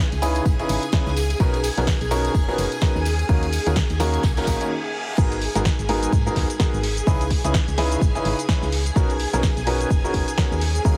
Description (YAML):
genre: piano house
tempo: 127 BPM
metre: 4/4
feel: swing 58% on 16ths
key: G# minor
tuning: A4 = 440 Hz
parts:
  - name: string machine, violins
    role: sustained chords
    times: 0.0-11.0 s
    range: G#4 to G#5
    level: -32 LUFS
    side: equal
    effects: ensemble chorus, sidechain pumping
  - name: solid FM bass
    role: bass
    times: 0.0-11.0 s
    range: F#1 to G#2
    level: -27 LUFS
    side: equal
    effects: tube saturation, sidechain pumping
  - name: house drum kit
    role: drums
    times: 0.1-11.0 s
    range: crash cymbal, hi-hat, shaker, snare drum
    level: -32 LUFS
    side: equal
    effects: none
  - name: vintage brush drum kit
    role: drums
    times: 0.1-11.0 s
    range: hi-hat, ride cymbal, snare drum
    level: -40 LUFS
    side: equal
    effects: none
  - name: tambourine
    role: percussion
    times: 0.1-4.7 s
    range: none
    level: -41 LUFS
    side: equal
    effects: none
  - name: clear grand piano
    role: riff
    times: 0.2-11.0 s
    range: G#2 to B4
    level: -28 LUFS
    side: equal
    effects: sidechain pumping, tape echo
  - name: electronic kick drum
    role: drums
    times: 0.5-11.0 s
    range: none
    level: -23 LUFS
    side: equal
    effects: none
  - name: reverse cymbal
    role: sound effects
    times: 4.5-5.2 s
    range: none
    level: -37 LUFS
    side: equal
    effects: none
room: light reverb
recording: heavily compressed radio sound, multiband compression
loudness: -21 LUFS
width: mono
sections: 0.0-5.2 A section; 5.2-11.0 B section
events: reverse cymbal 4.5-5.2; break 4.7-5.2; drop 5.2-11.0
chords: 0.0 C#m9; 1.4 Bmaj9; 3.1 D#m7; 5.2 G#m9; 7.1 C#m9; 9.0 Bmaj9